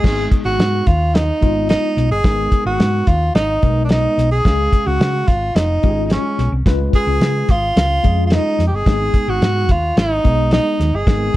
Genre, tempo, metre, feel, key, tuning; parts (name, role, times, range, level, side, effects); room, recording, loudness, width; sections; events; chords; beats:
uptempo 1960s-style soul; 109 BPM; 4/4; straight; G# dorian; A4 = 439 Hz
breathy tenor saxophone; melody; 0.0-11.4 s; C#4 to G#4; -18 LUFS; right 1 dB
tine electric piano; accompaniment; 0.0-11.4 s; G#3 to E#5; -23 LUFS; left 4 dB; overdrive, fast stereo tremolo
hollow-body short-scale fingered electric bass; bass; 0.0-11.3 s; E#1 to C#3; -19 LUFS; equal
cloth-damped thuddy drum kit; drums; 0.0-11.4 s; crash cymbal, hi-hat, kick drum, snare drum; -16 LUFS; equal
light reverb; dark, warm production; -13 LUFS; side -16 dB against mid
0.0-11.4 A section
0.0 G#m; 4.5 C#; 8.9 G#m
| 0.04 0.59 1.15 1.70 | 2.25 2.80 3.35 3.90 | 4.45 5.00 5.56 6.11 | 6.66 7.21 7.76 8.31 | 8.86 9.41 9.97 10.52 | 11.07